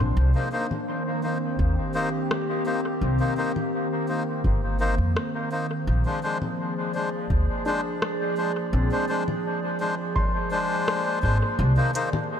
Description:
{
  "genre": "ambient dub",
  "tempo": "84 BPM",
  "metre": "4/4",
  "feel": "straight",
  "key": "C minor",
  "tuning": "A4 = 440 Hz",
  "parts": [
    { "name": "warbly tape-like pad", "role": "sustained chords", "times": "0.0-12.4 s", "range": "Eb3 to D5", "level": "-29 LUFS", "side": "right 1 dB", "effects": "chorus, built-in reverb" },
    { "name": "felt-muted upright piano", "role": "arpeggios", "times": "0.0-12.4 s", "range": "C4 to C6", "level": "-36 LUFS", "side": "left 2 dB", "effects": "low-pass filter, dub echo" },
    { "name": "upright bass", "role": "bass", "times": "0.0-11.8 s", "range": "G1 to F2", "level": "-22 LUFS", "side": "equal", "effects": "none" },
    { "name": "melodica", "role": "stabs", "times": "0.4-12.1 s", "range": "Ab3 to C5", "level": "-28 LUFS", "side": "left 2 dB", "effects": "dub echo" },
    { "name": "organic electronic drum kit", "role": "drums", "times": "0.7-12.3 s", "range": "congas, hi-hat, rim click", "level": "-32 LUFS", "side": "left 2 dB", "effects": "studio reverb, dub echo" },
    { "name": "electronic kick drum", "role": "drums", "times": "1.6-10.3 s", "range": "none", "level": "-27 LUFS", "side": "equal", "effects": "studio reverb" }
  ],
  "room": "moderate scoring stage reverb, RT60 2.0 s",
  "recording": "none",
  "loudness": "-23 LUFS",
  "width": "side -8 dB against mid",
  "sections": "0.0-11.6 A section",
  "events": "none",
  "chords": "0.2 Cm7; 5.9 Bb9; 11.6 Cm7"
}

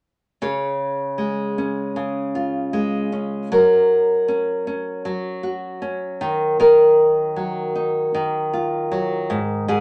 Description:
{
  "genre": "pop",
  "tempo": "78 BPM",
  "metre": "4/4",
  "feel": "straight",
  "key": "Db major",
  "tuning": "A4 = 441 Hz",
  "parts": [
    { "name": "nylon-string guitar", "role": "accompaniment", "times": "0.4-9.8 s", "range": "Ab2 to Db5", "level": "-20 LUFS", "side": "equal", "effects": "none" }
  ],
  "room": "moderate studio reverb, RT60 0.5 s",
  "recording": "none",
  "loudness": "-20 LUFS",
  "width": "mono",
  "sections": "0.4-9.8 A section",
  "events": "none",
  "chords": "0.4 Db; 3.5 Gb; 6.2 Ebmadd9; 9.3 Ab5"
}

